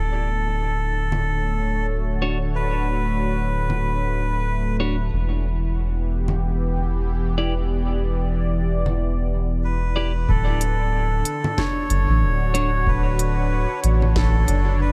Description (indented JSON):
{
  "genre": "ambient dub",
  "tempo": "93 BPM",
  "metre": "4/4",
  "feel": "swing 58% on 16ths",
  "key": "unclear",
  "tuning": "A4 = 440 Hz",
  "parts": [
    { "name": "melodica", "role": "melody", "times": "0.0-4.8, 9.6-14.9 s", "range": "A4 to C#5", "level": "-30 LUFS", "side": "equal", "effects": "dub echo" },
    { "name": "warm analog pad", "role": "sustained chords", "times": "0.0-14.9 s", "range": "D3 to D5", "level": "-30 LUFS", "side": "equal", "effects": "chorus" },
    { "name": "soft dub sub bass", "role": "bass", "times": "0.0-14.9 s", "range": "D1 to A1", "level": "-24 LUFS", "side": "equal", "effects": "tube saturation" },
    { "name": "organic electronic drum kit", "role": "drums", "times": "1.1-14.6 s", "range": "congas, hi-hat, snare drum", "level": "-32 LUFS", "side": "equal", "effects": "dub echo" },
    { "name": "clean electric guitar", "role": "stabs", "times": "2.2-12.7 s", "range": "D4 to D5", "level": "-34 LUFS", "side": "equal", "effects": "dub echo" },
    { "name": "electronic kick drum", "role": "drums", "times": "10.3-14.3 s", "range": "none", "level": "-28 LUFS", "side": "equal", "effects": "none" }
  ],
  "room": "light reverb",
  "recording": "none",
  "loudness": "-22 LUFS",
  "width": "mono",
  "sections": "0.0-10.3 A section; 10.3-14.9 B section",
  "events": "none",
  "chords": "0.0 Dmaj7; 5.1 Em7; 10.3 Dmaj7"
}